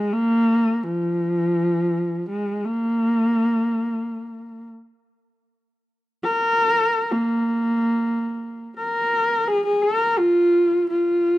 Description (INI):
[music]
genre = mongolian traditional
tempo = free time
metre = none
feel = none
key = unclear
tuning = A4 = 436 Hz
[part]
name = warm horsehead fiddle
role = solo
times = 0.0-11.4 s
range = F3 to Bb4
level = -19 LUFS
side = equal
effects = none
[sound]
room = studio ambience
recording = dry, close 1970s-style studio recording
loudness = -19 LUFS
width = side -16 dB against mid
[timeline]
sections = 0.0-9.5 A section; 9.5-11.4 B section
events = none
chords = none